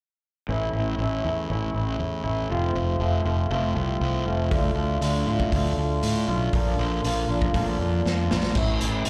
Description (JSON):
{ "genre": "quiet-loud alternative rock", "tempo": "119 BPM", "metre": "4/4", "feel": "straight", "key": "unclear", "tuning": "A4 = 435 Hz", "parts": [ { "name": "electric guitar through a small old amp", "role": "arpeggios", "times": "0.5-9.1 s", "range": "F2 to F4", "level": "-29 LUFS", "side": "equal", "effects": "lush chorus, slapback echo" }, { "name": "fuzz fingered electric bass", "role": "bass", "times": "0.5-9.1 s", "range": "F1 to A2", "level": "-28 LUFS", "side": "equal", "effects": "overdrive" }, { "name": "raw garage drum kit", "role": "drums", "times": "4.5-9.1 s", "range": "crash cymbal, hi-hat, kick drum, snare drum", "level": "-30 LUFS", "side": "equal", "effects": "none" } ], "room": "studio reverb", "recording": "live gig heard through the venue's PA, club reverb", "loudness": "-25 LUFS", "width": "mono", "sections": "0.5-8.6 A section", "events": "drum fill 8.1-8.6", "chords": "0.5 A; 2.5 F; 4.5 Dm; 6.5 Bb; 8.6 A", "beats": "| 0.48 0.99 1.49 2.00 | 2.50 3.00 3.51 4.01 | 4.52 5.02 5.53 6.03 | 6.54 7.04 7.54 8.05 | 8.55 9.06" }